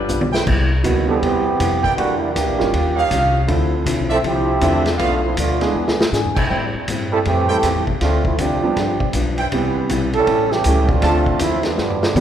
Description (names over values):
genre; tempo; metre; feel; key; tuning
jazz, big band swing; 159 BPM; 4/4; swing 63% on 8ths; C major; A4 = 441 Hz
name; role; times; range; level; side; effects
upright bass; bass; 0.0-12.2 s; G1 to B2; -22 LUFS; equal; none
hollow-body jazz guitar; accompaniment; 0.1-12.2 s; G2 to G#4; -24 LUFS; left 3 dB; none
vintage drum kit; drums; 0.1-12.2 s; crash cymbal, hi-hat, kick drum, ride cymbal, snare drum, toms; -23 LUFS; equal; none
clear trumpet section; stabs; 0.3-11.2 s; D4 to A5; -23 LUFS; right 2 dB; none
clear concert grand piano; accompaniment; 0.8-12.2 s; D3 to A4; -24 LUFS; right 2 dB; none
clear trombone section; second line; 1.1-12.2 s; D3 to A4; -20 LUFS; right 3 dB; none
room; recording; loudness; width
moderate scoring stage reverb, RT60 1.6 s; recorded in a church or concert hall; -15 LUFS; side -10 dB against mid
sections
0.5-12.2 A section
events
drum fill 0.1-0.5, 5.7-6.1, 11.8-12.2; trombone section solo 0.5-12.2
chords
0.5 Cmaj7; 2.0 Em7b5; 2.7 Eb9; 3.5 Dm9; 5.0 Bm7b5; 5.7 E7; 6.5 Am7; 8.0 Dm7; 8.8 G7; 9.5 Cmaj7; 10.3 A7; 11.0 Dm7